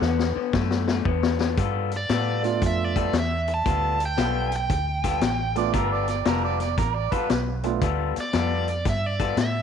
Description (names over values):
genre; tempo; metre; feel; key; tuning
electric blues shuffle; 116 BPM; 4/4; swing 66% on 8ths; G mixolydian; A4 = 441 Hz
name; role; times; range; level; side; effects
electric guitar through a small old amp; riff; 0.0-9.4 s; D3 to A4; -29 LUFS; left 13 dB; none
vintage muted fingered electric bass; bass; 0.0-9.6 s; F1 to A2; -27 LUFS; right 2 dB; none
vintage drum kit; drums; 0.0-9.5 s; hi-hat, kick drum, snare drum; -26 LUFS; left 4 dB; none
smooth overdriven lead guitar; melody; 2.0-9.6 s; D5 to A5; -28 LUFS; right 2 dB; none
warm concert grand piano; accompaniment; 2.4-7.8 s; A3 to F4; -29 LUFS; right 12 dB; none
warm harmonica; second line; 5.6-7.4 s; Bb4 to D5; -29 LUFS; right 12 dB; overdrive
room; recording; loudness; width
light reverb; 1960s-style stereo with parts hard left and right; -22 LUFS; side -7 dB against mid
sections
0.0-1.6 A section; 1.6-9.6 B section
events
drum fill 0.0-1.6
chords
0.0 Dadd9; 1.6 G9